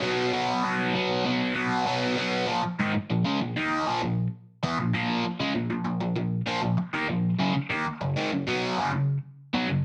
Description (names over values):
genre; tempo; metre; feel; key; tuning
rock; 98 BPM; 4/4; straight; Bb phrygian; A4 = 442 Hz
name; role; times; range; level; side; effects
cranked stack guitar; solo; 0.0-9.8 s; Gb2 to Eb4; -27 LUFS; equal; overdrive, phaser
room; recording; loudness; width
moderate studio reverb, RT60 0.7 s; dense, heavily limited modern master; -27 LUFS; mono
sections
0.0-2.5 A section; 2.5-9.8 B section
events
none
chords
0.0 B5; 2.5 Bb5; 7.4 Gb5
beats
| 0.02 0.63 1.25 1.86 | 2.48 3.09 3.70 4.32 | 4.93 5.55 6.16 6.78 | 7.39 8.00 8.62 9.23